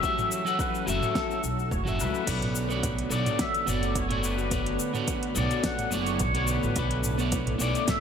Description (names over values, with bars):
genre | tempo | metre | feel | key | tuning
sunset chillout | 107 BPM | 4/4 | swing 54% on 16ths | B minor | A4 = 440 Hz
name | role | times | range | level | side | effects
pedal steel guitar | melody | 0.0-8.0 s | A4 to F#5 | -31 LUFS | left 2 dB | analog chorus, digital delay, shimmer reverb
electric guitar at the edge of break-up | accompaniment | 0.0-8.0 s | F#3 to F#5 | -31 LUFS | moving between left 6 dB and right 4 dB | auto-pan, digital delay, shimmer reverb
soft string machine | sustained chords | 0.0-8.0 s | D3 to F#4 | -34 LUFS | equal | ensemble chorus, shimmer reverb
electronic kick drum | drums | 0.0-8.0 s | none | -34 LUFS | equal | overdrive, small room ambience
smooth R&B drum kit | drums | 0.0-8.0 s | cabasa, crash cymbal, hi-hat, snare drum, toms | -32 LUFS | equal | overdrive, small room ambience
upright bass | bass | 0.9-7.7 s | F#1 to C#2 | -30 LUFS | equal | none
room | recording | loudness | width
moderate lush hall reverb, RT60 1.7 s | bright 1980s-style digital production | -25 LUFS | side -7 dB against mid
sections
0.0-2.3 A section; 2.3-8.0 B section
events
none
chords
0.0 F#m7; 2.3 Bm9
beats
| 0.03 0.59 1.15 1.71 | 2.27 2.84 3.40 3.96 | 4.52 5.08 5.64 6.20 | 6.76 7.32 7.88